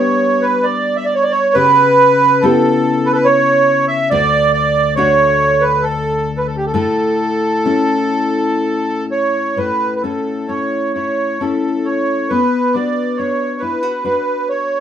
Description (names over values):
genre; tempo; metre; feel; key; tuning
celtic folk, Celtic slow air; 60-72 BPM; 3/4; rubato; A mixolydian; A4 = 440 Hz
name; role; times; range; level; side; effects
accordion; melody; 0.0-14.8 s; G4 to E5; -14 LUFS; right 2 dB; light tremolo tuning
nylon-string guitar; accompaniment; 0.0-14.8 s; D2 to B4; -18 LUFS; left 3 dB; none
room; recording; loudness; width
moderate studio reverb, RT60 0.5 s; band playing live in one room; -13 LUFS; side -9 dB against mid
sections
0.0-9.6 A section; 9.6-14.8 B section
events
none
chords
0.0 G; 1.6 C#m7b5; 4.1 D; 6.7 A; 12.3 Bm